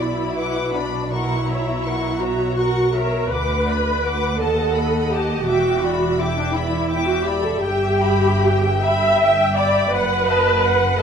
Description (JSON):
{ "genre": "classical, slow romantic movement for string orchestra", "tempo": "48-58 BPM (dotted quarters)", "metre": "6/8", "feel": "rubato", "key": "B minor, E minor from 7.6 s", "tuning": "A4 = 440 Hz", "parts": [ { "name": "clear studio violin section", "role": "melody", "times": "0.0-11.0 s", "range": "F#5 to D6", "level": "-28 LUFS", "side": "left 5 dB", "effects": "none" }, { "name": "rich studio violin section", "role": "second line", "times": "0.0-11.0 s", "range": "A#4 to G5", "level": "-26 LUFS", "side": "left 4 dB", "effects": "none" }, { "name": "warm studio viola section", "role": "accompaniment", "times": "0.0-11.0 s", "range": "D4 to E5", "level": "-19 LUFS", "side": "right 1 dB", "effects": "none" }, { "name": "rich studio cello section", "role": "bass", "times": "0.0-11.0 s", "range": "D2 to B2", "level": "-26 LUFS", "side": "right 2 dB", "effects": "none" }, { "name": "warm studio double bass section", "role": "bass", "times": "0.0-11.0 s", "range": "E1 to D#2", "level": "-26 LUFS", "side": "right 2 dB", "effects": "none" } ], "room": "wet recital hall reverb, RT60 1.6 s", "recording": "minimal, uncompressed stereo recording", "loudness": "-17 LUFS", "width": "side -7 dB against mid", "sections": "0.0-11.0 A section", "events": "none", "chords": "0.0 Bm; 1.1 F#7/B; 3.3 Bm/D; 4.4 B7/D#; 5.5 Em7; 7.6 Em/G; 9.9 D#dim/F#" }